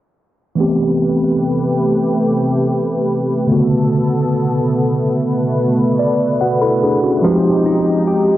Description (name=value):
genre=R&B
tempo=72 BPM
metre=4/4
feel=straight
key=A dorian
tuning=A4 = 440 Hz
part: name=mellow tine electric piano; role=accompaniment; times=0.6-8.4 s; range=C#3 to B5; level=-15 LUFS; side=equal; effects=medium stereo tremolo, cassette tape
part: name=warm analog pad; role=sustained chords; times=0.6-8.4 s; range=B2 to B4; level=-18 LUFS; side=equal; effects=chorus, cassette tape
part: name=direct-recorded clean electric guitar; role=arpeggios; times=7.2-8.4 s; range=F3 to G4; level=-18 LUFS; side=left 2 dB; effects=cassette tape
room=moderate spring reverb, RT60 2.1 s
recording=home recording on cassette, low-pass filter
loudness=-13 LUFS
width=side -14 dB against mid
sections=0.6-8.4 A section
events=filter sweep 0.6-8.4; tine electric piano fill 5.6-7.2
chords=0.6 Am9; 3.5 Bm9; 7.2 Fm9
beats=| 0.58 1.41 2.24 3.08 | 3.91 4.74 5.58 6.41 | 7.24 8.08